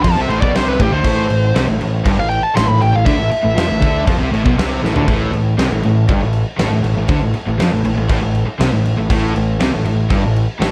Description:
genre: heavy metal.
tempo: 119 BPM.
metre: 4/4.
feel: straight.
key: A minor.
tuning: A4 = 438 Hz.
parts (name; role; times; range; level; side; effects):
high-gain lead guitar; melody; 0.0-4.0 s; G4 to C6; -21 LUFS; equal; distortion, tape echo.
overdriven electric guitar; riff; 0.0-10.7 s; G2 to F3; -25 LUFS; equal; none.
sludgy distorted guitar; riff; 0.0-10.7 s; G2 to F3; -22 LUFS; equal; overdrive.
tight distorted guitar; riff; 0.0-10.7 s; G2 to F3; -26 LUFS; equal; distortion.
growling picked electric bass; bass; 0.0-10.7 s; G1 to F2; -22 LUFS; equal; overdrive.
big rock drum kit; drums; 0.0-10.7 s; crash cymbal, kick drum, snare drum, toms; -22 LUFS; equal; none.
room: light reverb.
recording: worn, warbling old tape, cassette tape, warbly pitch drift.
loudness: -16 LUFS.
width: mono.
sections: 0.0-5.1 A section; 5.1-10.7 B section.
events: lead electric guitar solo 0.0-5.1; drum fill 4.8.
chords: 0.0 Am.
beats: 0.04 0.54 | 1.05 1.55 2.05 2.56 | 3.06 3.57 4.07 4.57 | 5.08 5.58 6.08 6.59 | 7.09 7.59 8.10 8.60 | 9.10 9.60 10.11 10.61.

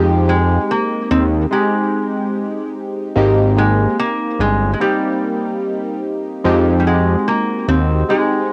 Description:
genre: contemporary R&B.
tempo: 73 BPM.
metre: 4/4.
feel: straight.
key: F minor.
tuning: A4 = 439 Hz.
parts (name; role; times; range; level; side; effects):
warm analog keys; accompaniment; 0.0-8.5 s; Ab3 to G4; -20 LUFS; equal; chorus, phaser, cassette tape.
fat analog bass; bass; 0.0-8.0 s; G1 to F2; -18 LUFS; equal; none.
lap resonator guitar; melody; 0.3-8.5 s; G3 to C4; -22 LUFS; equal; tape echo.
room: light reverb.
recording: home recording on cassette.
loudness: -17 LUFS.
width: mono.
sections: 0.0-8.5 A section.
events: none.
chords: 0.0 Fm7; 3.2 Abmaj7; 6.4 Fm7.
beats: 0.69 1.51 2.33 | 3.15 3.98 4.80 5.62 | 6.44 7.26 8.09.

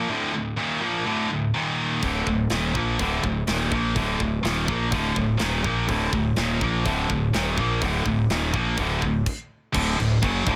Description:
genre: heavy metal.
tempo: 124 BPM.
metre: 4/4.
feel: straight.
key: unclear.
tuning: A4 = 437 Hz.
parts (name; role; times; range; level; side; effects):
high-gain distorted guitar; riff; 0.0-10.6 s; D2 to Bb3; -25 LUFS; equal; distortion.
fuzz fingered electric bass; bass; 2.0-10.6 s; D1 to Bb1; -30 LUFS; equal; overdrive.
tight metal drum kit; drums; 2.0-10.6 s; crash cymbal, hi-hat, kick drum, snare drum; -32 LUFS; equal; none.
room: small room ambience.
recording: none.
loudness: -24 LUFS.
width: mono.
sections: 0.0-9.7 A section.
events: stop 9.3-9.7.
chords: 0.0 D5; 1.6 Eb5; 2.0 D5; 9.3 N.C.; 9.7 D.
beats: | 0.10 0.59 1.07 1.55 | 2.04 2.52 3.00 3.48 | 3.97 4.45 4.93 5.41 | 5.90 6.38 6.86 7.34 | 7.82 8.31 8.79 9.27 | 9.75 10.23.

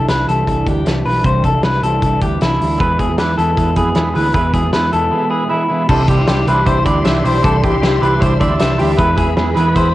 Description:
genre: jangly indie pop.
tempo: 155 BPM.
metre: 4/4.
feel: straight.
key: C major.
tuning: A4 = 440 Hz.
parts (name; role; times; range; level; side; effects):
electric guitar at the edge of break-up; accompaniment; 0.0-9.9 s; C3 to E4; -19 LUFS; right 3 dB; ensemble chorus, cassette tape.
electric guitar through a small old amp; arpeggios; 0.0-9.9 s; E4 to E5; -17 LUFS; left 2 dB; cassette tape, tape echo.
vintage muted picked electric bass; bass; 0.0-9.9 s; B1 to F2; -18 LUFS; equal; none.
loose indie drum kit; drums; 0.1-9.8 s; crash cymbal, hi-hat, kick drum, snare drum; -19 LUFS; equal; none.
combo organ; accompaniment; 2.8-9.9 s; B3 to A5; -22 LUFS; right 4 dB; cassette tape.
warm studio string section; sustained chords; 5.9-9.9 s; G4 to C6; -24 LUFS; left 1 dB; cassette tape.
room: light reverb.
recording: home recording on cassette.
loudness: -12 LUFS.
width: side -15 dB against mid.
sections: 0.0-5.9 A section; 5.9-9.9 B section.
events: transistor combo organ fill 8.2-9.0.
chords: 0.0 Cadd9; 2.8 E; 5.9 Cadd9; 9.0 E.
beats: 0.09 0.48 0.86 | 1.25 1.64 2.02 2.41 | 2.80 3.18 3.57 3.96 | 4.34 4.73 5.12 5.50 | 5.89 6.28 6.66 7.05 | 7.44 7.82 8.21 8.60 | 8.98 9.37 9.76.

